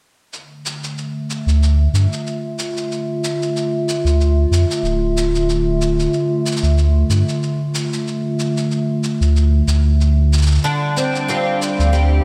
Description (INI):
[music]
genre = folktronica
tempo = 93 BPM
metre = 4/4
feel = swing 56% on 16ths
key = D minor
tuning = A4 = 438 Hz
[part]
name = warbly tape-like pad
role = sustained chords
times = 0.3-12.2 s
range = D3 to E5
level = -23 LUFS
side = equal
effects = chorus, built-in reverb
[part]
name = shaker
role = drums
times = 0.3-12.1 s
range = none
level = -30 LUFS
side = equal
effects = none
[part]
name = warm sub bass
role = bass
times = 1.5-12.2 s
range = D1 to G2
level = -16 LUFS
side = equal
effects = none
[part]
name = picked twelve-string acoustic guitar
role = arpeggios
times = 10.6-12.2 s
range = D3 to F4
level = -20 LUFS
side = equal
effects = ensemble chorus, tape echo
[sound]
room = light reverb, digital ambience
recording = none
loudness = -18 LUFS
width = mono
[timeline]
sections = 0.3-12.2 A section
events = filter sweep on sub bass 0.3-12.2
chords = 0.3 Dm; 10.6 G7sus4/D